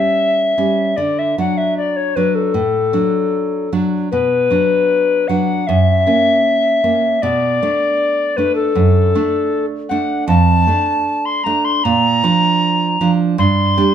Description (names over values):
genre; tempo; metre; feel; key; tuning
romantic duo for recorder and classical guitar; 77 BPM; 4/4; rubato; D minor from 10.3 s; A4 = 441 Hz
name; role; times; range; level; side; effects
mellow hollow alto recorder; melody; 0.0-13.9 s; A4 to C6; -15 LUFS; left 3 dB; none
nylon-string guitar; accompaniment; 0.0-13.9 s; F2 to D4; -17 LUFS; right 3 dB; none
room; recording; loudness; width
moderate large studio reverb, RT60 0.9 s; band playing live in one room; -13 LUFS; side -9 dB against mid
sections
0.0-13.9 A section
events
none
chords
0.0 A7 (rootless); 1.0 D; 4.1 Bm; 5.7 F#7; 7.2 Bm7; 10.3 Dm/F; 11.8 Bb; 13.4 G5